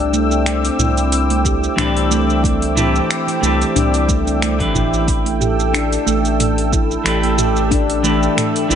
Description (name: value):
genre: organic downtempo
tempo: 91 BPM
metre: 4/4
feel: swing 55% on 16ths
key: unclear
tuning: A4 = 443 Hz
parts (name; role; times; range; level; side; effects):
- warm analog pad; sustained chords; 0.0-8.8 s; C4 to E6; -22 LUFS; left 1 dB; chorus, sidechain pumping
- handpan; arpeggios; 0.0-8.8 s; A3 to G4; -19 LUFS; right 1 dB; vintage 12-bit sampler grit, digital delay
- round analog bass; bass; 0.0-8.8 s; G1 to C2; -20 LUFS; equal; none
- afro-pop drum kit; drums; 0.1-8.8 s; finger snaps, hi-hat, shaker, toms; -22 LUFS; right 1 dB; none
- electronic kick drum; drums; 1.4-7.9 s; none; -20 LUFS; equal; none
- clean electric guitar; accompaniment; 1.8-8.8 s; E3 to B4; -21 LUFS; left 1 dB; sidechain pumping, digital delay
room: light reverb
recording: nothing above 10.7 kHz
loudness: -14 LUFS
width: side -8 dB against mid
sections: 0.0-8.8 A section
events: none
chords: 0.0 Cadd9; 5.1 A7(no3)